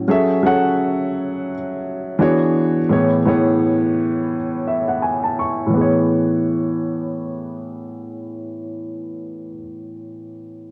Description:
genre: R&B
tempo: 85 BPM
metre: 4/4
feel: swing 58% on 16ths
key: A major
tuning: A4 = 440 Hz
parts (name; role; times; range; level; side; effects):
- warm upright piano; solo; 0.0-10.7 s; A2 to C#6; -20 LUFS; equal; low-pass filter, cassette tape
room: moderate spring reverb, RT60 1.4 s, small room ambience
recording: home recording on cassette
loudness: -19 LUFS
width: mono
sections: 0.1-5.7 A section; 5.7-8.5 B section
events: filter sweep on upright piano 0.1-5.7; upright piano fill 4.3-5.7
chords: 0.1 F#m9; 2.2 E13; 2.9 Amaj7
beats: | 0.07 0.77 1.48 2.18 | 2.89 3.59 4.30 5.01 | 5.71 6.42 7.12 7.83

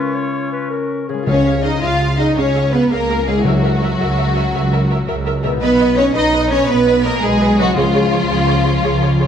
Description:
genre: cinematic, heroic adventure film score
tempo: 111 BPM (dotted quarters)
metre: 12/8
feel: straight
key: unclear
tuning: A4 = 438 Hz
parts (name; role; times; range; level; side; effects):
- clear clarinet; second line; 0.0-1.3 s; G#4 to C#5; -26 LUFS; left 2 dB; none
- hollow concert flute; second line; 0.0-1.1 s; C#6; -31 LUFS; left 1 dB; none
- warm oboe; second line; 0.0-0.7 s; E#4-22c; -28 LUFS; left 1 dB; none
- mellow French horn section; sustained chords; 0.0-1.0 s; C#4; -24 LUFS; left 4 dB; none
- concert harp; arpeggios; 0.0-9.3 s; B2 to F#4; -25 LUFS; left 9 dB; none
- rich symphonic violin section; melody; 1.3-9.3 s; E#4 to E#5; -20 LUFS; left 3 dB; none
- warm symphonic violin section; second line; 1.3-9.3 s; E#4 to E#5; -23 LUFS; equal; none
- clear symphonic viola section; accompaniment; 1.3-9.3 s; G#4 to E#5; -23 LUFS; right 1 dB; none
- rich symphonic cello section; bass; 1.3-9.3 s; E#3 to E#4; -18 LUFS; right 2 dB; none
- rich symphonic double bass section; bass; 1.3-9.3 s; B1 to C#2; -19 LUFS; right 2 dB; none
- timpani; percussion; 1.3-4.0, 7.8-8.3 s; C#3; -22 LUFS; left 1 dB; none
room: moderate scoring stage reverb, RT60 1.7 s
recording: none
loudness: -13 LUFS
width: side -8 dB against mid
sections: 0.0-1.3 A section; 1.3-9.3 A section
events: none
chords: 0.0 C#; 3.4 F#7/C#; 5.6 B; 7.8 C#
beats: 0.16 0.72 | 1.27 1.82 2.36 2.90 | 3.45 3.99 4.53 5.07 | 5.61 6.15 6.68 7.22 | 7.76 8.29 8.83

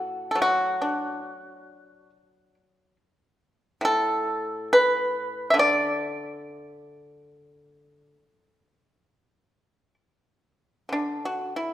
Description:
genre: chinese traditional, Chinese solo plucked strings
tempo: 69 BPM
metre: 4/4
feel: rubato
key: D gong mode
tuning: A4 = 440 Hz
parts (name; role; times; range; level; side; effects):
- pipa; solo; 0.0-11.7 s; A2 to E5; -22 LUFS; equal; none
room: wet recital hall reverb, RT60 1.6 s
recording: recorded in a church or concert hall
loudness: -22 LUFS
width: side -13 dB against mid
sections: 0.0-10.9 A section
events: none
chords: none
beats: | 0.39 1.26 2.12 2.98 | 3.84 4.71 5.56 6.42 | 7.29 8.17 9.05 9.96 | 10.92

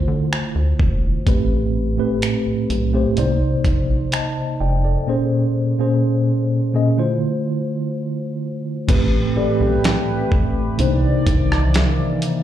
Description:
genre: contemporary R&B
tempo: 63 BPM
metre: 4/4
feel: straight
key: A minor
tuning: A4 = 444 Hz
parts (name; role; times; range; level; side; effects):
- mellow tine electric piano; accompaniment; 0.0-12.4 s; A2 to A5; -19 LUFS; equal; medium stereo tremolo
- rubbery square bass; bass; 0.0-11.8 s; E1 to D3; -20 LUFS; equal; none
- dusty soul sampler-style drum kit; drums; 0.3-12.4 s; crash cymbal, finger snaps, hi-hat, kick drum, rim click, snare drum; -20 LUFS; equal; none
- chorused pulse-width pad; sustained chords; 9.2-12.4 s; Eb3 to D5; -24 LUFS; equal; none
- celesta; texture; 9.4-11.2 s; D5; -30 LUFS; equal; stereo widening, tape echo
room: light reverb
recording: played on a big sound system in a bare room, large studio reverb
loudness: -17 LUFS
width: side -11 dB against mid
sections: 0.0-8.9 A section; 8.9-12.4 B section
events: none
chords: 0.0 Dm9; 1.3 Am9; 3.2 Cm9; 5.1 Bbm9; 7.0 Dm9; 8.9 Am9; 10.8 Cm9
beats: 0.32 | 1.27 2.22 3.17 4.12 | 5.08 6.03 6.98 7.93 | 8.89 9.84 10.79 11.74

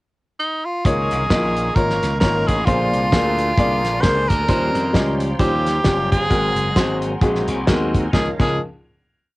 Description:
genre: uptempo gospel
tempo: 132 BPM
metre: 4/4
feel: swing 58% on 8ths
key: Db major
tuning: A4 = 440 Hz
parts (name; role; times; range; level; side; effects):
- edgy tenor saxophone; melody; 0.4-8.6 s; Eb4 to C5; -21 LUFS; right 1 dB; none
- bright tonewheel organ; sustained chords; 0.8-8.4 s; D3 to C5; -31 LUFS; right 2 dB; none
- pipe organ, stopped flute; sustained chords; 0.8-8.4 s; Bb4 to Db6; -32 LUFS; left 1 dB; cassette tape
- glassy slap bass; bass; 0.8-8.6 s; Gb1 to F2; -23 LUFS; equal; tube saturation
- warm soul drum kit; drums; 0.8-8.5 s; crash cymbal, hi-hat, kick drum, snare drum; -20 LUFS; equal; none
- clear grand piano; accompaniment; 0.9-8.6 s; Db2 to Eb5; -22 LUFS; left 2 dB; cassette tape
room: little or no reverb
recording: home recording on cassette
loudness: -16 LUFS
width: side -20 dB against mid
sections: 0.0-0.8 pickup bar; 0.8-8.1 breakdown; 8.1-9.4 final chord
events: none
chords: 0.0 N.C.; 0.8 Db69; 2.7 Bb9; 4.5 Eb13; 6.3 Ab9; 8.1 Db69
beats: 0.39 | 0.85 1.31 1.76 2.22 | 2.67 3.13 3.58 4.04 | 4.49 4.95 5.40 5.86 | 6.31 6.77 7.22 7.68 | 8.13

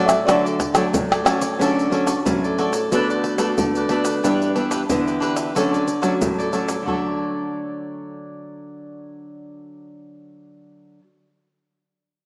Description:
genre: samba and choro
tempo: 91 BPM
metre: 4/4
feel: straight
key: D major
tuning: A4 = 439 Hz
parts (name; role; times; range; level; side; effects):
- felt-muted upright piano; melody; 0.0-1.2 s; D5 to F#5; -25 LUFS; equal; none
- cavaquinho; accompaniment; 0.0-11.0 s; D4 to E5; -27 LUFS; equal; none
- nylon-string guitar; accompaniment; 0.0-11.0 s; G2 to F#4; -25 LUFS; equal; none
- egg shaker, pandeiro, tamborim and surdo; percussion; 0.1-7.0 s; none; -26 LUFS; equal; none
room: wet lush hall reverb, RT60 2.3 s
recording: rough home demo mix, small speaker sound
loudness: -21 LUFS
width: mono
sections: 0.0-1.6 A section; 1.6-6.9 B section; 6.9-9.5 C section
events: none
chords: 0.0 Dmaj7; 2.9 Bm7/D; 4.2 G6; 5.5 Dmaj7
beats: 0.27 0.93 | 1.59 2.25 2.91 3.57 | 4.23 4.89 5.55 6.21 | 6.87 7.53 8.19 8.85

